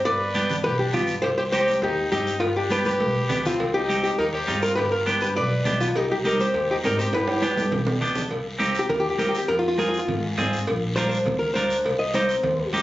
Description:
latin, cumbia; 204 BPM; 4/4; straight; C harmonic minor, C minor from 8.3 s; A4 = 441 Hz
archtop guitar, miked and amplified; melody; 0.0-12.7 s; F4 to Eb5; -24 LUFS; left 1 dB
bright trumpet; second line; 0.0-8.0 s; B3 to B4; -30 LUFS; left 2 dB
guiro; percussion; 0.0-12.8 s; -37 LUFS; left 2 dB
upright bass; bass; 0.1-12.8 s; G1 to Ab2; -30 LUFS; equal
cowbell and timbales; percussion; 0.1-12.8 s; -30 LUFS; right 1 dB
clean electric guitar; accompaniment; 0.3-12.8 s; B3 to Bb4; -26 LUFS; right 1 dB
congas; percussion; 0.3-12.8 s; -31 LUFS; right 2 dB
moderate studio reverb, RT60 0.5 s; recorded on a phone in the room, club reverb, nothing above 7.8 kHz; -21 LUFS; side -15 dB against mid
0.0-8.3 A section; 8.3-12.8 B section
drum fill 2.9-3.6, 7.1-8.3; hollow-body jazz guitar solo 8.3-12.8
0.1 G; 1.2 Cm; 2.4 G; 3.6 Cm; 4.8 G; 6.0 Cm; 7.1 G; 8.3 Cm; 9.5 Fm; 10.7 Bb; 11.8 Cm

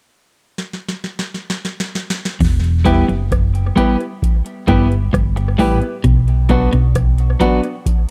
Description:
roots reggae; 66 BPM; 4/4; straight; E minor; A4 = 440 Hz
booming analog drum machine; drums; 0.6-8.1 s; crash cymbal, hi-hat, kick drum, rim click, snare drum; -21 LUFS; equal; tape echo
clean electric guitar; riff; 2.4-7.0 s; E2 to B2; -22 LUFS; equal
hollow-body short-scale fingered electric bass; bass; 2.4-7.3 s; E1 to B1; -18 LUFS; equal
clean electric guitar; accompaniment; 2.8-7.6 s; F#3 to G4; -22 LUFS; equal; spring reverb, dub echo
clear upright piano; stabs; 2.8-7.6 s; B3 to B4; -22 LUFS; equal
digital ambience; dry, close 1970s-style studio recording; -16 LUFS; mono
0.0-2.4 A section; 2.4-8.1 B section
drum fill 0.6-2.4
0.0 N.C.; 2.4 Em; 6.0 Bm

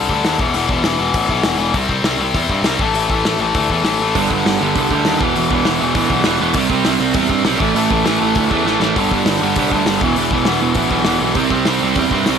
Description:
punk rock; 200 BPM; 4/4; straight; A4 = 440 Hz
tight distorted guitar; riff; 0.0-12.4 s; E2 to C4; -17 LUFS; left 5 dB; distortion
fuzz picked electric bass; bass; 0.0-12.4 s; E1 to G2; -23 LUFS; equal; overdrive
loose indie drum kit; drums; 0.1-12.3 s; hi-hat, kick drum, snare drum; -21 LUFS; equal
crunchy overdriven guitar; riff; 4.2-12.4 s; E2 to C4; -18 LUFS; right 16 dB
little or no reverb; -14 LUFS; side -7 dB against mid
0.0-12.4 A section
drum fill 8.7-9.0
0.4 E5; 1.8 C5; 2.8 A5; 4.2 G5; 5.2 E5; 6.6 C5; 7.6 A5; 9.0 G5; 10.0 E5; 11.4 C5

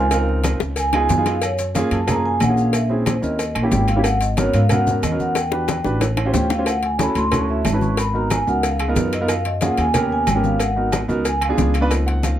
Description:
Afro-Cuban jazz; 183 BPM; 4/4; straight; F# major; A4 = 440 Hz
vibraphone with soft mallets; melody; 0.0-11.7 s; G#4 to C#6; -23 LUFS; equal; plate reverb
warm grand piano; accompaniment; 0.0-12.4 s; F3 to Gb5; -23 LUFS; right 2 dB
upright bass; bass; 0.0-12.3 s; G#1 to G#2; -21 LUFS; equal
agogo bells and timbales; percussion; 0.1-12.4 s; -30 LUFS; right 6 dB
congas; percussion; 0.1-12.4 s; -26 LUFS; left 2 dB
cowbell and bongos; percussion; 0.1-12.4 s; -28 LUFS; left 5 dB
maracas; percussion; 0.1-12.4 s; -35 LUFS; left 7 dB
light reverb; -17 LUFS; side -11 dB against mid
0.0-1.4 A section; 1.4-11.9 A section
vibraphone solo 0.0-11.9; drum fill 0.6-1.4, 5.4-6.7
0.0 Dbmaj13; 0.8 Db7; 1.4 F#maj9; 2.7 A#m7b5; 3.4 D#7b9; 4.0 G#m11; 5.4 Em9; 6.0 A7alt; 6.7 Dmaj9; 8.0 G#m9; 8.6 C#13; 9.3 F#maj9; 9.9 D#7b13; 10.6 G#m9; 11.3 C#7b9

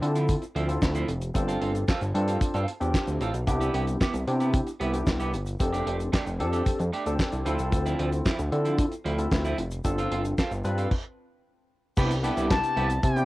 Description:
early-eighties boogie funk; 113 BPM; 4/4; straight; C major; A4 = 440 Hz
barky tine electric piano; accompaniment; 0.0-13.2 s; B3 to B4; -31 LUFS; left 1 dB; overdrive, lush chorus, cassette tape
clean electric guitar; riff; 0.0-13.2 s; F3 to A4; -33 LUFS; right 3 dB; lush chorus, cassette tape
fat analog bass; bass; 0.0-13.2 s; F1 to D3; -27 LUFS; equal
damped 70s drum kit; drums; 0.0-13.2 s; crash cymbal, handclaps, hi-hat, kick drum, snare drum; -27 LUFS; equal; cassette tape
tube shaker; percussion; 0.2-13.2 s; -50 LUFS; left 6 dB
warm analog pad; sustained chords; 12.0-13.2 s; C3 to E4; -37 LUFS; equal
expressive synth lead; melody; 12.5-13.2 s; G5 to A5; -26 LUFS; left 3 dB; chorus, phaser, cassette tape
light reverb; home recording on cassette; -24 LUFS; side -18 dB against mid
0.0-12.0 A section; 12.0-13.2 B section
stop 10.9-12.0
0.0 Dm9; 1.4 G9sus4; 3.5 Cmaj7; 5.6 F69; 7.5 Dm9; 9.8 G9sus4; 12.0 Cmaj7

